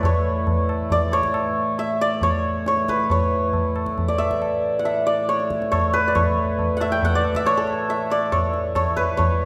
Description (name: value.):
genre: indian classical, Hindustani.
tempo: 138 BPM.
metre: 7/4.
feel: straight.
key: A raga khamaj.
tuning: A4 = 440 Hz.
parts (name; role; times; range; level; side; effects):
santur; melody; 0.0-9.5 s; A4 to G5; -23 LUFS; equal; none.
pedal harmonium; drone; 0.0-9.5 s; A2 to E3; -32 LUFS; equal; none.
tabla; percussion; 0.0-9.3 s; none; -27 LUFS; equal; none.
room: wet recital hall reverb, RT60 1.7 s.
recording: recorded in a church or concert hall.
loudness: -21 LUFS.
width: mono.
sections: 0.0-9.5 A section.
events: none.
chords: none.